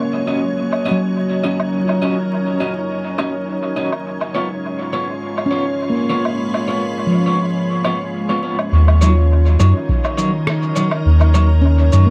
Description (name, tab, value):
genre	ambient dub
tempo	103 BPM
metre	4/4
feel	swing 54% on 16ths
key	Eb minor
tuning	A4 = 443 Hz
part	soft additive organ-like pad	sustained chords	0.0-12.1 s	Eb3 to Cb6	-25 LUFS	equal	ensemble chorus, built-in reverb
part	handpan	arpeggios	0.0-12.1 s	F3 to F4	-24 LUFS	equal	tape echo
part	electric guitar at the edge of break-up	stabs	0.3-12.1 s	Gb3 to Eb5	-25 LUFS	equal	tremolo, dub echo
part	electronic woodblock, shaker and rim click	drums	0.7-12.1 s	none	-29 LUFS	equal	dub echo
part	soft dub sub bass	bass	8.7-12.1 s	Eb2 to Gb2	-13 LUFS	equal	none
part	electronic kick drum	drums	9.9-10.0 s	none	-21 LUFS	equal	none
room	moderate spring reverb, RT60 1.2 s, digital ambience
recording	echo-heavy mix, vinyl crackle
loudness	-17 LUFS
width	mono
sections	0.0-8.7 A section; 8.7-12.1 B section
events	none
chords	0.0 Ebm7; 4.1 Db7; 8.7 Ebm7